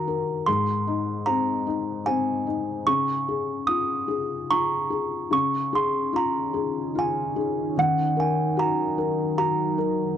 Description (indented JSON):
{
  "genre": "children's music, lullaby",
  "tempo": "74 BPM",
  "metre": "3/4",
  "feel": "straight",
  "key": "Db major",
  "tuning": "A4 = 440 Hz",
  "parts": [
    { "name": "music box", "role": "melody", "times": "0.0-10.1 s", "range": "Gb5 to Eb6", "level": "-25 LUFS", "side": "right 4 dB", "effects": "none" },
    { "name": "felt-muted upright piano", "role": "accompaniment", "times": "0.0-10.2 s", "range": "Ab2 to Bb4", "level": "-26 LUFS", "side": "left 6 dB", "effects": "none" },
    { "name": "deep dark ambient pad", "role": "sustained chords", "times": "6.2-10.2 s", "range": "Eb3 to Eb4", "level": "-29 LUFS", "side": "right 2 dB", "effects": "chorus, built-in reverb" }
  ],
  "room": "light reverb",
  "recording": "dry, close 1970s-style studio recording",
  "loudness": "-22 LUFS",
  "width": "side -9 dB against mid",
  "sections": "0.0-5.3 A section; 5.3-10.2 A section",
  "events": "none",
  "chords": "0.5 Ab; 2.9 Dbadd9; 7.8 Ebm",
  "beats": "| 0.47 1.27 2.07 | 2.87 3.68 4.50 | 5.32 6.14 6.96 | 7.77 8.57 9.37 | 10.16"
}